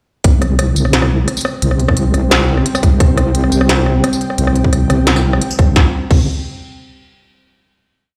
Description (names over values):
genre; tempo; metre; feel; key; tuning
half-time drum and bass; 174 BPM; 4/4; half-time; unclear; A4 = 440 Hz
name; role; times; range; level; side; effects
dark analog pad; sustained chords; 1.1-5.9 s; G3 to G5; -23 LUFS; equal; chorus, sidechain pumping
deep soft wobble bass; bass; 0.2-6.3 s; C2; -16 LUFS; equal; chorus
electronic kick drum; drums; 0.2-6.2 s; none; -14 LUFS; equal; overdrive, small room ambience
industrial drum kit; drums; 0.2-6.2 s; crash cymbal, hi-hat, rim click, snare drum, tambourine; -20 LUFS; equal; small room ambience
room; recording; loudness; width
light reverb, digital ambience; played on a big sound system in a bare room, large studio reverb; -13 LUFS; mono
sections
0.2-5.8 drop; 5.8-7.1 final chord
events
drop 0.2-5.8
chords
0.2 C5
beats
| 0.24 0.59 0.93 1.28 | 1.62 1.97 2.31 2.66 | 3.00 3.35 3.69 4.04 | 4.38 4.73 5.07 5.42 | 5.76 6.11